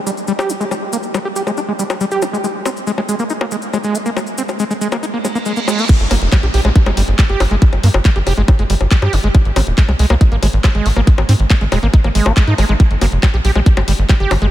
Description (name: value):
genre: psychedelic trance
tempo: 139 BPM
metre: 4/4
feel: straight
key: G phrygian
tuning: A4 = 442 Hz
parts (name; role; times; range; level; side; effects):
- overdriven acid bass; riff; 0.1-14.5 s; G3 to G4; -19 LUFS; right 1 dB; auto-pan, sidechain pumping, analog delay
- maracas; percussion; 0.1-5.9 s; none; -29 LUFS; left 2 dB; none
- garage drum kit; drums; 0.4-14.5 s; bongos, crash cymbal, handclaps, hi-hat; -22 LUFS; left 3 dB; studio reverb
- reverse cymbal and downlifter; sound effects; 5.2-9.3 s; none; -25 LUFS; right 2 dB; none
- electronic kick drum; drums; 5.9-14.2 s; none; -10 LUFS; equal; studio reverb
- tight sequencer bass; bass; 6.0-14.5 s; Eb1 to Ab2; -14 LUFS; equal; none
room: light reverb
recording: none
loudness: -12 LUFS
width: side -14 dB against mid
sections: 0.0-5.9 A section; 5.9-14.5 B section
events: filter sweep on acid bass 0.0-5.9; reverse cymbal 5.2-5.9; drop 5.9-14.5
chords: 0.0 G5; 2.4 Ab5; 5.9 G5; 9.3 Ab5; 12.8 G5